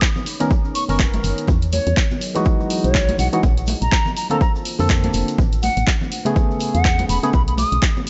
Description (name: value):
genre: deep house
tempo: 123 BPM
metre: 4/4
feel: swing 58% on 16ths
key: unclear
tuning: A4 = 441 Hz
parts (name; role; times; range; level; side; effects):
- deep dark ambient pad; sustained chords; 0.0-8.1 s; E3 to D#5; -33 LUFS; equal; none
- deep house drum kit; drums; 0.0-8.1 s; handclaps, hi-hat; -27 LUFS; equal; studio reverb
- electronic kick drum; drums; 0.0-7.9 s; none; -21 LUFS; equal; studio reverb
- tube shaker; percussion; 0.0-8.1 s; none; -41 LUFS; equal; none
- congas; percussion; 0.2-8.1 s; none; -31 LUFS; equal; none
- percussive organ stab; stabs; 0.4-7.3 s; C#3 to A#4; -25 LUFS; equal; chorus, sidechain pumping, tape echo
- hollow concert flute; melody; 0.8-7.8 s; C#5 to D#6; -27 LUFS; equal; vintage 12-bit sampler grit, tape echo
- woody FM bass; bass; 0.9-7.8 s; E1 to F2; -23 LUFS; equal; sidechain pumping
room: light reverb, digital ambience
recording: nothing above 7.9 kHz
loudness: -19 LUFS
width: mono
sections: 0.0-8.1 A section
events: none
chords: 0.0 Bmaj9; 1.5 Emaj9; 3.4 Bbmaj9; 5.4 Amaj9; 7.3 Bmaj9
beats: 0.02 0.51 0.99 | 1.48 1.97 2.46 2.95 | 3.43 3.92 4.41 4.90 | 5.38 5.87 6.36 6.85 | 7.34 7.82